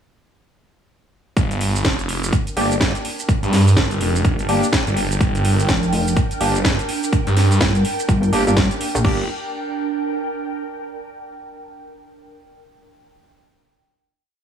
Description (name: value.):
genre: bass house.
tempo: 125 BPM.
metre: 4/4.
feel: swing 60% on 16ths.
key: G minor.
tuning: A4 = 439 Hz.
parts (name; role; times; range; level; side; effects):
phased detuned saw bass; bass; 1.4-9.3 s; F1 to G2; -18 LUFS; right 1 dB; phaser, tube saturation, sidechain pumping.
electronic kick drum; drums; 1.4-9.2 s; none; -19 LUFS; equal; none.
house drum kit; drums; 1.4-9.2 s; crash cymbal, hi-hat, shaker, snare drum; -24 LUFS; right 1 dB; none.
ethereal airy pad; texture; 2.1-10.9 s; D4 to G5; -27 LUFS; right 2 dB; ensemble chorus, built-in reverb, phaser, sidechain pumping.
percussive organ stab; stabs; 2.6-9.2 s; Bb3 to G4; -23 LUFS; right 1 dB; lush chorus, sidechain pumping, digital delay.
pulsing pluck wobble bass; bass; 5.7-9.0 s; F1 to Bb1; -18 LUFS; equal; chorus, overdrive, sidechain pumping.
room: light reverb.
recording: small room ambience.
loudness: -16 LUFS.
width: side -8 dB against mid.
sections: 1.4-9.0 drop; 9.0-11.0 final chord.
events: drop 1.4-9.0.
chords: 1.4 Gm.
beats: | 1.37 1.85 2.33 2.81 | 3.29 3.77 4.25 4.73 | 5.21 5.69 6.17 6.65 | 7.13 7.61 8.09 8.57 | 9.05 9.53 10.01 10.49.